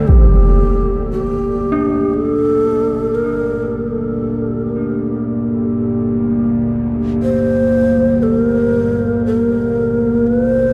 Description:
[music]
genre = dark ambient drone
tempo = 59 BPM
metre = 4/4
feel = straight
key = unclear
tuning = A4 = 440 Hz
[part]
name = mellow hollow long shakuhachi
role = melody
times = 0.0-10.7 s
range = G4 to C5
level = -20 LUFS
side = equal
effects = diffuse ambient delay
[part]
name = dark analog pad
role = sustained chords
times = 0.0-10.7 s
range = G3 to D5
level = -20 LUFS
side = equal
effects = subtle chorus
[part]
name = dark detuned synth bell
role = arpeggios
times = 0.0-10.7 s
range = D4 to G4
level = -26 LUFS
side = equal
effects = chorus, tremolo, diffuse ambient delay
[part]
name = bowed-like drone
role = drone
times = 0.0-10.7 s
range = G1 to D2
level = -27 LUFS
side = equal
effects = built-in reverb
[sound]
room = wet huge ambient reverb, RT60 9.2 s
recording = dark, warm production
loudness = -16 LUFS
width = mono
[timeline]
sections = 0.1-10.7 A section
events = fade-in on synth drone 0.1-10.7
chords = 0.0 Csus2/G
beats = | 0.11 1.12 2.14 3.16 | 4.17 5.19 6.21 7.23 | 8.24 9.26 10.28

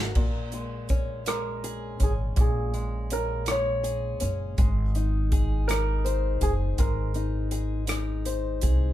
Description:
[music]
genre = six-eight pop ballad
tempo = 54 BPM (dotted quarters)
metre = 6/8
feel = straight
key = Bb minor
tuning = A4 = 440 Hz
[part]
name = fingerpicked acoustic archtop guitar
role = accompaniment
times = 0.0-8.9 s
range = Bb2 to C5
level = -33 LUFS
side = left 4 dB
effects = none
[part]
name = upright bass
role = bass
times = 0.0-8.9 s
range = Gb1 to C2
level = -28 LUFS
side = equal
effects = none
[part]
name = natural country drum kit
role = drums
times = 0.2-8.8 s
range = crash cymbal, hi-hat, kick drum, rim click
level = -27 LUFS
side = equal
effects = none
[part]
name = warm concert grand piano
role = melody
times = 1.3-8.2 s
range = Ab4 to Db5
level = -30 LUFS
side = right 1 dB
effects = none
[sound]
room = moderate small room reverb, RT60 0.5 s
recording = band playing live in one room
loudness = -24 LUFS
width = side -13 dB against mid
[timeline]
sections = 0.0-8.9 A section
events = drum fill 0.0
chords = 0.2 Bbm7; 4.6 Abadd9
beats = | 0.16 1.27 | 2.37 3.47 | 4.58 5.68 | 6.78 7.89

